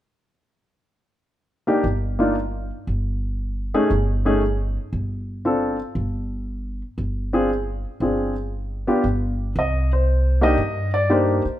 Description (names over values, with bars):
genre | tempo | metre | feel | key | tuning
jazz piano trio | 117 BPM | 4/4 | swing 67% on 8ths | C minor | A4 = 439 Hz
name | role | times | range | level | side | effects
warm baby grand piano | melody | 1.7-11.4 s | A3 to Eb5 | -21 LUFS | left 1 dB | none
upright bass | bass | 1.8-11.5 s | G1 to G2 | -23 LUFS | equal | none
room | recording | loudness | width
moderate large studio reverb, RT60 1.3 s | none | -20 LUFS | side -13 dB against mid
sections
1.3-9.6 A section; 9.6-11.6 B section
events
none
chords
1.3 N.C.; 9.6 Cm9